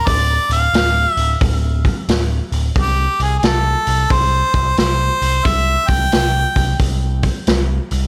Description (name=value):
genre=blues rock power trio and southern rock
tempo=89 BPM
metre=4/4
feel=swing 65% on 8ths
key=unclear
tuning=A4 = 439 Hz
part: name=bright harmonica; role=melody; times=0.0-6.8 s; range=G4 to G5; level=-20 LUFS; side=equal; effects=overdrive, analog delay
part: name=overdriven picked electric bass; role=bass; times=0.1-8.1 s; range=D1 to C2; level=-20 LUFS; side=equal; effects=none
part: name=vintage drum kit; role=drums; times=0.1-8.0 s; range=hi-hat, kick drum, snare drum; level=-22 LUFS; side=equal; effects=none
room=little or no reverb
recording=none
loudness=-16 LUFS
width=mono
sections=0.0-8.1 A section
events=none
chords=0.0 Dm; 2.8 C5